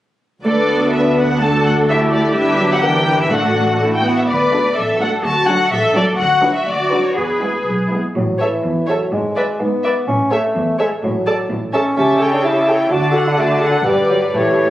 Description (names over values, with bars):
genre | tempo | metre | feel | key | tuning
quick classical-period movement for symphony orchestra | 125 BPM | 2/4 | straight | D major, A major from 6.2 s | A4 = 440 Hz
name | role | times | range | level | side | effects
muted chamber violin section | melody | 0.4-14.7 s | B4 to A5 | -20 LUFS | left 2 dB | none
muted chamber cello section | bass | 0.4-14.7 s | E2 to B4 | -20 LUFS | equal | none
muted chamber double bass section | bass | 0.4-14.7 s | G1 to E2 | -24 LUFS | right 1 dB | none
muted studio violin section | second line | 0.5-14.7 s | E4 to F#5 | -23 LUFS | left 1 dB | none
muted chamber viola section | accompaniment | 0.5-14.7 s | E3 to B4 | -20 LUFS | right 1 dB | none
mellow bassoon | accompaniment | 8.2-14.7 s | E3 to F#4 | -18 LUFS | equal | none
room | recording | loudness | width
moderate recital hall reverb, RT60 1.6 s | recorded on a phone in the room, club reverb | -14 LUFS | side -14 dB against mid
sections
0.4-8.2 A section; 8.2-14.7 B section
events
none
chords
0.4 D; 2.4 Em7/G; 2.8 Em7b5/G; 3.3 D/A; 3.8 A5; 4.3 D; 6.2 Bm/D; 7.2 E; 8.2 A5; 9.1 E/G# (rootless); 10.1 A; 11.0 D/A (rootless); 11.5 A; 12.0 A7/C#; 12.9 D; 13.9 G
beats
| 0.44 0.93 | 1.41 1.88 | 2.35 2.82 | 3.30 3.79 | 4.28 4.76 | 5.24 5.71 | 6.19 6.67 | 7.17 7.66 | 8.16 8.64 | 9.13 9.61 | 10.08 10.56 | 11.03 11.50 | 11.97 12.44 | 12.91 13.38 | 13.86 14.34